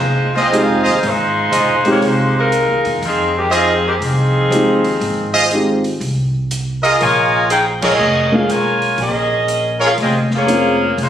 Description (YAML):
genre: jazz, big band swing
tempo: 121 BPM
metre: 4/4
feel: swing 66% on 8ths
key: F minor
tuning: A4 = 440 Hz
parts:
  - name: clear saxophone section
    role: melody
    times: 0.0-11.1 s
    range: Eb3 to Ab5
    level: -15 LUFS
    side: left 1 dB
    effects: none
  - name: upright bass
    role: bass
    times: 0.0-11.1 s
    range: E1 to F2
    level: -21 LUFS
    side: equal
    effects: none
  - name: bright trumpet section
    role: stabs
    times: 0.3-9.9 s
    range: F4 to Eb5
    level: -17 LUFS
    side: right 1 dB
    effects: none
  - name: open jazz drum kit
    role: drums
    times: 0.4-11.1 s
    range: crash cymbal, hi-hat, kick drum, snare drum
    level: -27 LUFS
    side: right 2 dB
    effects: none
  - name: dark grand piano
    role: accompaniment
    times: 0.5-10.8 s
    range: Ab3 to Ab4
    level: -16 LUFS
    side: equal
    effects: none
room: moderate echo chamber reverb, RT60 1.5 s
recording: recorded on a phone in the room, studio reverb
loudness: -13 LUFS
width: side -10 dB against mid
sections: 0.0-11.1 A section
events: band accent 7.7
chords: 0.0 Fm7; 7.0 Bbm7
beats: 0.03 0.53 | 1.03 1.52 2.02 2.52 | 3.02 3.51 4.01 4.51 | 5.00 5.50 6.00 6.50 | 7.00 7.49 7.99 8.49 | 8.98 9.48 9.98 10.48 | 10.97